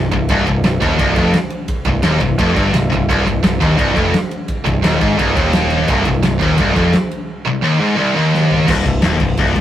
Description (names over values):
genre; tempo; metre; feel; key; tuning
heavy metal; 172 BPM; 4/4; straight; C minor; A4 = 440 Hz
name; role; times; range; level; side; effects
heavy high-gain guitar; riff; 0.0-8.7 s; C2 to Ab2; -18 LUFS; right 5 dB; distortion
scooped high-gain guitar; riff; 0.0-9.6 s; C2 to Ab2; -17 LUFS; left 4 dB; distortion
growling picked electric bass; bass; 0.0-9.6 s; C1 to Ab1; -19 LUFS; equal; overdrive
big rock drum kit; drums; 0.1-9.6 s; crash cymbal, kick drum, ride cymbal, snare drum, toms; -19 LUFS; right 1 dB; none
room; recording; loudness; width
moderate studio reverb, RT60 0.6 s; rough rehearsal-room recording; -13 LUFS; side -11 dB against mid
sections
0.0-8.7 A section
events
drum fill 8.3-8.7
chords
0.0 Cm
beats
| 0.29 0.64 0.99 1.34 | 1.69 2.04 2.39 2.74 | 3.09 3.44 3.79 4.14 | 4.49 4.83 5.18 5.54 | 5.88 6.24 6.58 6.93 | 7.29 7.63 7.99 8.34 | 8.69 9.03 9.38